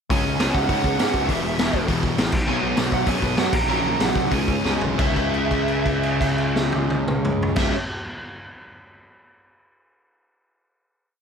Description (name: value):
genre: punk rock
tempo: 172-203 BPM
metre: 4/4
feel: straight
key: C# minor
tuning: A4 = 440 Hz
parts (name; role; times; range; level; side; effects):
- smooth overdriven lead guitar; melody; 0.1-7.7 s; E5 to A#5; -27 LUFS; right 4 dB; none
- distorted electric guitar; riff; 0.1-7.7 s; E2 to C#4; -27 LUFS; right 14 dB; distortion
- sludgy distorted guitar; riff; 0.1-7.7 s; E2 to C#4; -26 LUFS; left 12 dB; overdrive
- fuzz picked electric bass; bass; 0.1-7.7 s; E1 to G#2; -28 LUFS; equal; overdrive
- raw garage drum kit; drums; 0.1-7.6 s; crash cymbal, hi-hat, kick drum, snare drum, toms; -24 LUFS; equal; none
room: little or no reverb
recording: none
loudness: -19 LUFS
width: side -6 dB against mid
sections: 0.1-5.0 chorus; 5.0-7.8 final chord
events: slowing down 2.5-5.0; drum fill 4.6-5.0; held note 5.0-7.6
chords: 0.1 C#5; 1.3 E5; 2.3 B5; 3.5 F#/A#; 4.3 C#5; 5.0 C#m